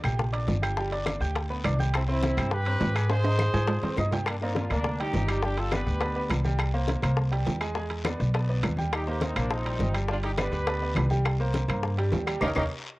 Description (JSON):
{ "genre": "latin, salsa", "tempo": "206 BPM", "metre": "4/4", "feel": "straight", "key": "unclear", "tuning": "A4 = 442 Hz", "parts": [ { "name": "bright upright piano", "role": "accompaniment", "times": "0.0-12.7 s", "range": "G3 to Ab6", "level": "-33 LUFS", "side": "right 1 dB", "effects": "cassette tape" }, { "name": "upright bass", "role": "bass", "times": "0.0-12.7 s", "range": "G1 to Ab2", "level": "-28 LUFS", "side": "equal", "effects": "none" }, { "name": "bongos", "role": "percussion", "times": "0.0-12.6 s", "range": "none", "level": "-35 LUFS", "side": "left 4 dB", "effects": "none" }, { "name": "congas", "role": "percussion", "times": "0.0-12.6 s", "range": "none", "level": "-35 LUFS", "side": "left 1 dB", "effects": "none" }, { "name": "timbales", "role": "percussion", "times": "0.0-12.6 s", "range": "none", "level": "-34 LUFS", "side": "right 3 dB", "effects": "none" }, { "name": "claves", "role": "percussion", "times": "0.1-12.6 s", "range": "none", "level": "-37 LUFS", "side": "left 3 dB", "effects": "none" }, { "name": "guiro", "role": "percussion", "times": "0.1-12.6 s", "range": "none", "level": "-45 LUFS", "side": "left 3 dB", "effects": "none" }, { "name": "bright horn section", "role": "melody", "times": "1.9-6.3, 8.9-12.6 s", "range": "Bb3 to C5", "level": "-31 LUFS", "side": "equal", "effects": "cassette tape" } ], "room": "light reverb, studio reverb", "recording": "home recording on cassette", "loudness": "-24 LUFS", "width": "side -19 dB against mid", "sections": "0.0-4.3 A section; 4.3-13.0 B section", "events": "drum fill 3.1-4.3, 12.4-13.0; band accent 12.4-13.0", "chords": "0.0 Ebmaj7 (rootless); 0.8 G; 1.9 Cmaj7; 3.1 Ab; 4.3 Gm; 5.4 G; 6.6 C5; 7.8 E7; 8.9 Eb6; 10.1 G; 11.3 Cm7; 12.4 Eb7(no3)" }